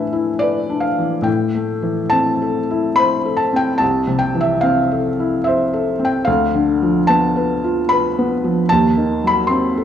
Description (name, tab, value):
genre	classical, romantic nocturne for solo piano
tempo	73 BPM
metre	3/4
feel	uneven beats, rubato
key	A minor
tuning	A4 = 440 Hz
part	felt-muted upright piano	solo	0.0-9.8 s	C2 to B#5	-15 LUFS	left 1 dB	none
room	wet recital hall reverb, RT60 1.6 s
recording	none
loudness	-15 LUFS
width	side -9 dB against mid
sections	0.0-9.8 A section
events	none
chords	0.0 E7/A; 1.3 Am; 3.8 Am/C; 6.3 Bdim/D; 8.7 D#dim7